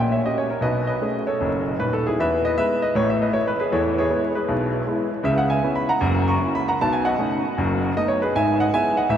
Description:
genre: jazz, stride piano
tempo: 156 BPM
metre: 4/4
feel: swing 66% on 8ths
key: E major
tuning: A4 = 440 Hz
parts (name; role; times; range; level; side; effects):
- clear grand piano; solo; 0.0-9.2 s; D#1 to C#6; -19 LUFS; equal; none
room: wet huge ambient reverb, RT60 7.3 s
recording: in a vast, echoing space, vinyl crackle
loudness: -19 LUFS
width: side -9 dB against mid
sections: 0.0-9.2 A section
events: none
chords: 0.0 A#dim7; 0.6 B13; 2.2 E; 2.9 A5; 3.7 E; 5.3 C#m7; 6.0 F#7; 6.8 B9; 7.6 B7/F#; 8.3 E/G#

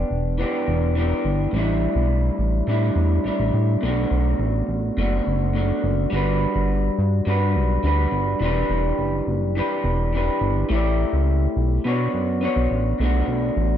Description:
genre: indie pop, bedroom pop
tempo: 105 BPM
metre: 4/4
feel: straight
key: B minor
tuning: A4 = 439 Hz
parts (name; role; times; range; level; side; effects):
- electric guitar through a small old amp; accompaniment; 0.0-13.8 s; A2 to D5; -23 LUFS; equal; wide subtle chorus, warbly pitch drift
- chorused synth bass; bass; 0.0-13.8 s; E1 to B2; -21 LUFS; equal; none
room: light reverb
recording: none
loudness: -19 LUFS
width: side -10 dB against mid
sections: 0.0-13.0 A section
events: none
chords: 0.0 Em7; 1.5 A7sus4; 3.8 Bm7; 6.1 Gmaj7; 8.4 Em7; 10.7 A7sus4; 11.9 Bmadd9; 13.0 Bm7

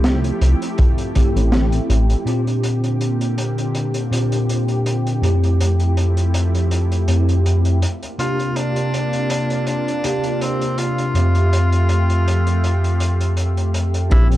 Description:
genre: vaporwave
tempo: 81 BPM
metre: 4/4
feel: swing 55% on 16ths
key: F major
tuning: A4 = 441 Hz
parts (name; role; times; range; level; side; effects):
- bell-like tine electric piano; accompaniment; 0.0-14.4 s; F2 to E5; -18 LUFS; equal; ensemble chorus
- lush unison pad; sustained chords; 0.0-14.4 s; C3 to Bb5; -27 LUFS; equal; chorus, phaser
- chorused synth bass; bass; 0.0-2.2, 14.1-14.4 s; A1 to C2; -15 LUFS; equal; none
- crunchy breakbeat drum kit; drums; 0.0-14.4 s; cabasa, hi-hat, snare drum; -27 LUFS; equal; none
- kick drum; drums; 0.8-1.3, 14.1-14.3 s; none; -15 LUFS; equal; none
- edgy tenor saxophone; melody; 8.2-14.3 s; C4 to F4; -24 LUFS; equal; tape echo
room: small room ambience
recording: dark, warm production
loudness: -16 LUFS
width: side -14 dB against mid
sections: 0.0-2.3 A section; 2.3-14.1 B section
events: kick drops out 1.5-2.3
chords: 0.0 Fmaj9; 2.3 Bb69; 5.2 Fmaj9; 7.8 C9sus4; 11.2 Fmaj9

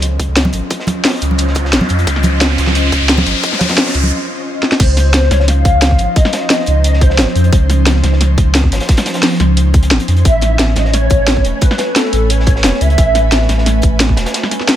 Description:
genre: liquid drum and bass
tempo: 176 BPM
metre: 4/4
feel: straight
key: Db major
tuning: A4 = 440 Hz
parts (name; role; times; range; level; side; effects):
- ethereal airy pad; sustained chords; 0.0-14.8 s; F3 to G#5; -20 LUFS; equal; ensemble chorus, built-in reverb, sidechain pumping
- warm sub bass; bass; 0.0-14.3 s; E1 to F2; -13 LUFS; equal; none
- crunchy breakbeat drum kit; drums; 0.0-14.8 s; hi-hat, snare drum; -24 LUFS; equal; high-pass filter on hats, high-pass filter on snare, high-pass filter on room
- drum and bass drum kit; drums; 0.0-14.8 s; crash cymbal, hi-hat, snare drum; -16 LUFS; equal; none
- riser; sound effects; 0.8-4.1 s; none; -20 LUFS; left 1 dB; none
- electronic kick drum; drums; 0.2-14.2 s; none; -12 LUFS; equal; high-pass filter on kick
- congas; percussion; 0.4-4.1 s; none; -20 LUFS; right 1 dB; none
- hollow clarinet-like synth lead; melody; 4.8-7.8, 10.3-13.5 s; A4 to F5; -18 LUFS; equal; ensemble chorus, vintage 12-bit sampler grit, tape echo
room: small room ambience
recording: none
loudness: -10 LUFS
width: side -11 dB against mid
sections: 0.0-4.8 A section; 4.8-14.8 B section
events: build-up 0.0-4.8; filter sweep on ambient pad 0.0-4.8; riser 0.8-4.1; break 4.1-4.8; drum fill 4.6; drop 4.8-14.8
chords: 0.0 Dbmaj9; 10.3 Amaj9

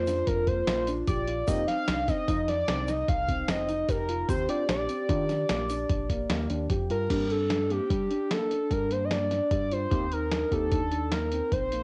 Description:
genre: progressive instrumental, band music in an uneven meter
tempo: 149 BPM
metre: 7/4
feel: straight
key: G minor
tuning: A4 = 437 Hz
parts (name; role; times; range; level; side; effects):
- overdriven synth lead; melody; 0.0-11.8 s; G4 to F5; -32 LUFS; equal; cassette tape
- vibraphone with soft mallets; second line; 0.0-11.8 s; D4 to G4; -38 LUFS; equal; cassette tape
- dark grand piano; arpeggios; 0.0-11.8 s; Bb3 to G4; -38 LUFS; equal; cassette tape
- deep dub picked electric bass; bass; 0.0-11.8 s; F1 to G3; -36 LUFS; equal; none
- lo-fi sampler-style drum kit; drums; 0.1-11.8 s; crash cymbal, hi-hat, kick drum, snare drum; -33 LUFS; equal; cassette tape
- egg shaker; percussion; 0.1-5.9 s; none; -57 LUFS; equal; none
- overdriven tine electric piano; accompaniment; 1.5-10.8 s; Bb3 to G4; -37 LUFS; equal; cassette tape
room: moderate digital room reverb, RT60 0.9 s, digital ambience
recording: home recording on cassette, nothing above 10.8 kHz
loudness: -28 LUFS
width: mono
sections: 0.0-7.1 A section; 7.1-11.8 B section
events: none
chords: 0.0 Bb; 1.5 F7(no3); 4.3 Ebmaj7; 7.1 Gm; 9.9 Eb

